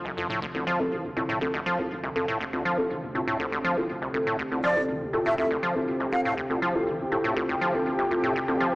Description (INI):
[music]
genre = acid house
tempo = 121 BPM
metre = 4/4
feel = straight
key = unclear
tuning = A4 = 444 Hz
[part]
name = lush unison pad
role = sustained chords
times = 0.0-8.8 s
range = D2 to G4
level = -33 LUFS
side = equal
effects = chorus
[part]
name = deep mellow chord stab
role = stabs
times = 0.0-8.8 s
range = C4 to A4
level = -29 LUFS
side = equal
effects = chorus, tape echo
[part]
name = acid bass, square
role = riff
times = 0.1-8.7 s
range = D1 to F3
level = -28 LUFS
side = equal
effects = overdrive, tape echo
[part]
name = dusty soul sampler-style drum kit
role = drums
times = 0.1-8.7 s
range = hi-hat, snare drum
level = -41 LUFS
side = equal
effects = none
[part]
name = breathy concert flute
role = melody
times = 4.6-6.3 s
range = D5 to F5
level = -29 LUFS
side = equal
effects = tape echo
[sound]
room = moderate lush hall reverb, RT60 1.9 s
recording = small speaker sound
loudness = -24 LUFS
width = side -23 dB against mid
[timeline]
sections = 0.0-8.8 A section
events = filter sweep on analog synth pad 0.0-8.8; filter sweep on synth stab 0.0-8.8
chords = 0.0 Dm7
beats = 0.42 0.92 | 1.41 1.91 2.41 2.90 | 3.40 3.89 4.39 4.88 | 5.38 5.88 6.37 6.87 | 7.36 7.86 8.36